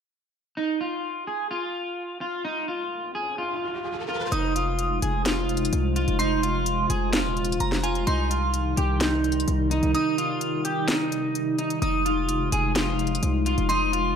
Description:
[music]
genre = hip hop, trap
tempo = 128 BPM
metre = 4/4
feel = half-time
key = F minor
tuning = A4 = 441 Hz
[part]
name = electric guitar at the edge of break-up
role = melody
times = 0.6-14.2 s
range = Eb4 to Ab4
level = -27 LUFS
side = right 1 dB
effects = lush chorus, low-pass filter
[part]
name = riser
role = sound effects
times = 2.9-4.3 s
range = none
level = -36 LUFS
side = right 1 dB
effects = none
[part]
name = glassy synth bell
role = second line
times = 4.3-14.2 s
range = Ab5 to Eb6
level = -30 LUFS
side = right 1 dB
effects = chorus, phaser, ping-pong delay
[part]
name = warbly tape-like pad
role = sustained chords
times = 4.6-14.2 s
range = C3 to F4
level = -28 LUFS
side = left 1 dB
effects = chorus, built-in reverb, tremolo
[part]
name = hard-hitting 808-style bass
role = bass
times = 4.3-14.2 s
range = Eb1 to C2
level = -26 LUFS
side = equal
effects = none
[part]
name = trap drum kit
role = drums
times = 4.3-14.0 s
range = hi-hat, snare drum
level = -28 LUFS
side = left 1 dB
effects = none
[sound]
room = wet plate reverb, RT60 1.5 s, digital ambience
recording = dreamy mix soaked in reverb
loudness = -23 LUFS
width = side -7 dB against mid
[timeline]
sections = 0.6-4.3 A section; 4.3-14.2 B section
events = riser 2.9-4.3; kick muted 9.9-11.8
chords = 0.6 N.C.; 4.3 Fm7; 8.1 Cm; 11.8 Fm7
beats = | 0.57 1.04 1.51 1.98 | 2.44 2.91 3.38 3.85 | 4.32 4.79 5.26 5.73 | 6.20 6.66 7.13 7.60 | 8.07 8.54 9.01 9.48 | 9.95 10.41 10.88 11.35 | 11.82 12.29 12.76 13.23 | 13.70

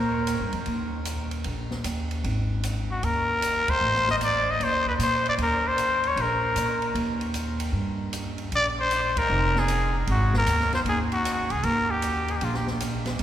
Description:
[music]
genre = jazz, small-group swing and bop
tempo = 153 BPM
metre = 4/4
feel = swing 66% on 8ths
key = unclear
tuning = A4 = 439 Hz
[part]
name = trumpet with straight mute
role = melody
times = 0.0-12.7 s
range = F4 to Eb5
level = -25 LUFS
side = left 1 dB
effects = none
[part]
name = upright bass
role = bass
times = 0.0-13.2 s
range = F1 to Bb2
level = -27 LUFS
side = equal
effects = none
[part]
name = open jazz drum kit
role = drums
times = 0.3-13.2 s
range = hi-hat, kick drum, ride cymbal, snare drum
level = -34 LUFS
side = right 1 dB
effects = none
[sound]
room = wet cathedral reverb, RT60 5.1 s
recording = recorded in a church or concert hall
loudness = -23 LUFS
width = side -11 dB against mid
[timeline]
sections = 0.0-13.2 A section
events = band accent 3.6, 9.1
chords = 0.0 Eb5; 2.2 Ab5; 3.8 Adim; 5.4 Eb; 8.5 Bb5; 10.1 Ab5; 11.6 Eb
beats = 0.28 | 0.68 1.07 1.46 1.86 | 2.25 2.64 3.03 3.43 | 3.82 4.21 4.60 5.00 | 5.39 5.78 6.17 6.56 | 6.95 7.35 7.74 8.13 | 8.52 8.91 9.30 9.69 | 10.08 10.47 10.86 11.25 | 11.64 12.03 12.42 12.81 | 13.20

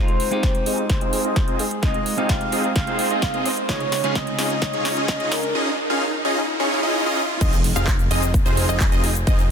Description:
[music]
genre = EDM, festival progressive house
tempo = 129 BPM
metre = 4/4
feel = straight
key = F minor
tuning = A4 = 440 Hz
[part]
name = breathy flute-like synth lead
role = melody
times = 0.0-5.5 s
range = Ab4 to F5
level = -26 LUFS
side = equal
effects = lush chorus, dub echo
[part]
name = clean electric guitar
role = accompaniment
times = 0.0-5.5 s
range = Db3 to Ab4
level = -29 LUFS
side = right 3 dB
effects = phaser, sidechain pumping
[part]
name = big supersaw lead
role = riff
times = 0.0-9.4 s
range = C4 to F5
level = -24 LUFS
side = equal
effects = sidechain pumping, low-pass filter, dub echo
[part]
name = riser and impact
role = sound effects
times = 1.7-9.3 s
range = none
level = -30 LUFS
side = equal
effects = none
[part]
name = big-room dance drum kit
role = drums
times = 0.1-9.5 s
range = crash cymbal, handclaps, hi-hat, shaker, snare drum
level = -28 LUFS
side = right 1 dB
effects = high-pass filter on hats, high-pass filter on snare, high-pass filter on cymbals, high-pass filter on perc
[part]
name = electronic kick drum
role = drums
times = 0.4-9.4 s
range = none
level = -21 LUFS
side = equal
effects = none
[part]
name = wide unison pluck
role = arpeggios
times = 7.4-9.4 s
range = C5 to F5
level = -29 LUFS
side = equal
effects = sidechain pumping, dub echo
[part]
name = fat analog bass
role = bass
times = 7.4-9.5 s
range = F1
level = -24 LUFS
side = equal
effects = tube saturation, sidechain pumping
[sound]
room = light reverb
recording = dense, heavily limited modern master, high-pass filter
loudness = -18 LUFS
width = side -7 dB against mid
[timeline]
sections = 0.0-7.4 A section; 7.4-9.5 B section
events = build-up 0.0-7.4; drum fill 0.0-5.6; filter sweep on supersaw synth 0.0-7.4; filter sweep 0.0-7.4; riser 1.7-7.4; drop 7.4-9.5; impact 7.4-9.3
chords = 0.0 Fm7; 3.7 Dbadd9; 7.4 Fm7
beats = 0.43 0.90 1.36 | 1.83 2.29 2.76 3.23 | 3.69 4.16 4.62 5.08 | 5.55 6.02 6.48 6.95 | 7.41 7.88 8.34 8.81 | 9.27

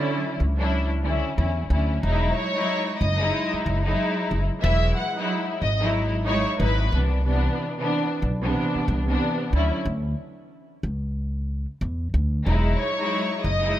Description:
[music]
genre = hip hop, boom-bap hip-hop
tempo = 92 BPM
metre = 4/4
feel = swing 61% on 16ths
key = E major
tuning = A4 = 440 Hz
[part]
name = rich studio string section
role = accompaniment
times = 0.0-13.8 s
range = C3 to E4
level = -25 LUFS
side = equal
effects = cassette tape, high-pass filter, low-pass filter
[part]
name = upright bass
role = bass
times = 0.4-13.7 s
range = E1 to E2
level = -23 LUFS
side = equal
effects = none
[part]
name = warm studio violin section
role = melody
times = 2.3-6.9, 12.8-13.8 s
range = B4 to F#6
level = -27 LUFS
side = left 1 dB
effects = high-pass filter, low-pass filter
[sound]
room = studio reverb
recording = none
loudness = -22 LUFS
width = side -12 dB against mid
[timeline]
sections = 0.0-12.5 A section; 12.5-13.8 B section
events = break 9.9-12.5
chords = 0.0 Dmaj9; 2.0 Emaj9; 6.9 Cmaj9; 9.5 Dmaj7sus2; 12.5 Emaj9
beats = 0.07 0.72 1.38 | 2.03 2.68 3.33 3.98 | 4.63 5.29 5.94 6.59 | 7.24 7.90 8.55 9.20 | 9.85 10.51 11.16 11.81 | 12.46 13.11 13.77

